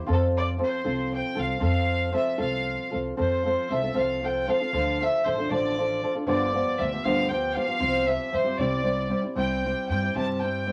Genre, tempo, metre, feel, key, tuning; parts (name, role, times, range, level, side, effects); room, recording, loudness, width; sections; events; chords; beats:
mexican folk, mariachi; 78 BPM (dotted quarters); 6/8; straight; F major; A4 = 439 Hz
flamenco guitar; accompaniment; 0.0-10.7 s; G2 to A4; -28 LUFS; equal
clear chamber violin section; melody; 0.1-10.7 s; A4 to A5; -31 LUFS; equal
upright bass; bass; 0.1-10.6 s; G1 to G2; -33 LUFS; equal
moderate studio reverb, RT60 0.6 s; vinyl crackle; -26 LUFS; mono
0.0-3.2 A section; 3.2-10.7 B section
0.1 F; 4.7 Dm; 6.3 G7; 7.8 Csus4; 8.6 C
| 0.09 0.85 | 1.61 2.39 | 3.17 3.96 | 4.73 5.50 | 6.27 7.04 | 7.80 8.58 | 9.36 10.14